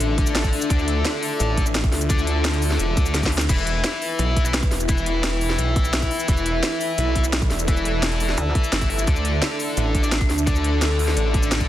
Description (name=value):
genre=dark technical drum and bass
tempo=172 BPM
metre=4/4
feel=straight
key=E phrygian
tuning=A4 = 439 Hz
part: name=dark analog pad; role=sustained chords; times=0.0-11.7 s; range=D4 to E5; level=-30 LUFS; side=left 1 dB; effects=chorus, sidechain pumping
part: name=heavy high-gain guitar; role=stabs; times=0.0-11.7 s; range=D4 to E5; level=-26 LUFS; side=left 4 dB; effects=distortion, tape echo
part: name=snarling distorted saw bass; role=bass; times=0.0-11.7 s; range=E1 to D2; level=-23 LUFS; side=equal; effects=distortion, tube saturation, sidechain pumping
part: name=drum and bass drum kit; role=drums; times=0.0-11.7 s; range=cabasa, crash cymbal, hi-hat, snare drum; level=-25 LUFS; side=equal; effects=studio reverb
part: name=warbly tape-like pad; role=texture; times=0.0-11.7 s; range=D4 to A5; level=-30 LUFS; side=equal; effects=chorus, built-in reverb, sidechain pumping
part: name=electronic kick drum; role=drums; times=0.2-11.7 s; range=none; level=-21 LUFS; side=equal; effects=studio reverb
part: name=pulsing pluck wobble bass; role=bass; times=8.4-8.5 s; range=D2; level=-22 LUFS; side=equal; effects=chorus
room=light reverb, digital ambience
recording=dense, heavily limited modern master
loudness=-18 LUFS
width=side -13 dB against mid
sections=0.0-11.7 A section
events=drum fill 3.1-3.5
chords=0.0 Dmadd9; 3.5 Em; 9.1 Dmadd9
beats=0.01 0.35 | 0.70 1.05 1.40 1.75 | 2.10 2.45 2.80 3.14 | 3.49 3.84 4.19 4.54 | 4.89 5.24 5.59 5.93 | 6.28 6.63 6.98 7.33 | 7.68 8.03 8.38 8.73 | 9.07 9.42 9.77 10.12 | 10.47 10.82 11.17 11.52